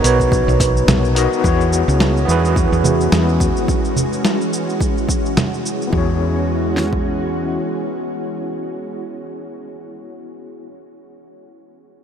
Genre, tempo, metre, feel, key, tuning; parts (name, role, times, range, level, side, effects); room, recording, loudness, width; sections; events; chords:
sunset chillout; 107 BPM; 4/4; swing 57% on 16ths; E major; A4 = 442 Hz
vibraphone with soft mallets; melody; 0.0-1.1 s; B4; -25 LUFS; equal; tape echo
overdriven tine electric piano; accompaniment; 0.0-10.7 s; B3 to D#5; -22 LUFS; moving between left 6 dB and right 5 dB; fast tremolo, auto-pan, tape echo
woody fretless electric bass; bass; 0.0-7.6 s; B1 to E2; -18 LUFS; equal; tube saturation
dusty soul sampler-style drum kit; drums; 0.0-5.9 s; congas, hi-hat, shaker, snare drum; -21 LUFS; right 1 dB
deep house drum kit; drums; 0.2-7.0 s; kick drum, snare drum; -20 LUFS; equal; overdrive
soft string machine; sustained chords; 2.1-8.9 s; E3 to F#4; -23 LUFS; equal; ensemble chorus
moderate huge ambient reverb, RT60 8.1 s; dreamy mix soaked in reverb; -15 LUFS; side -8 dB against mid
0.0-1.4 A section; 1.4-5.9 B section; 5.9-8.2 C section
0.0 Bmaj9; 1.4 E69